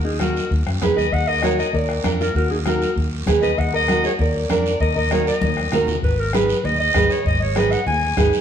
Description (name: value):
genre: latin, cumbia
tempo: 196 BPM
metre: 4/4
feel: straight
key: Eb harmonic minor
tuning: A4 = 435 Hz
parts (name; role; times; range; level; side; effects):
- warm clarinet; melody; 0.0-8.3 s; Ab4 to Ab5; -23 LUFS; equal; none
- mellow electric guitar; second line; 0.0-5.8 s; Eb4 to Eb5; -26 LUFS; left 4 dB; none
- fingered electric bass; bass; 0.0-8.3 s; Ab1 to Gb2; -24 LUFS; equal; none
- nylon-string guitar; accompaniment; 0.2-8.4 s; D4 to Cb5; -22 LUFS; right 4 dB; none
- bombo; percussion; 0.2-8.3 s; none; -25 LUFS; left 1 dB; none
- congas; percussion; 0.2-8.3 s; none; -28 LUFS; left 2 dB; none
- guiro; percussion; 0.2-8.4 s; none; -33 LUFS; right 5 dB; none
room: wet stone room reverb, RT60 1.4 s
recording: band playing live in one room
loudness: -17 LUFS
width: side -8 dB against mid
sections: 0.0-6.0 A section; 6.0-8.4 B section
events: drum fill 5.4-6.0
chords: 0.0 Ebm; 0.5 Abm/Eb; 1.1 Ebm; 1.7 Bb/Eb; 2.4 Ebm; 3.0 Abm/Eb; 3.6 Ebm; 4.2 Bb/Eb; 4.8 Ebm; 6.0 Abm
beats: 0.21 0.52 0.82 | 1.13 1.44 1.74 2.05 | 2.35 2.66 2.97 3.27 | 3.58 3.89 4.19 4.50 | 4.81 5.11 5.42 5.73 | 6.03 6.34 6.64 6.95 | 7.26 7.56 7.87 8.18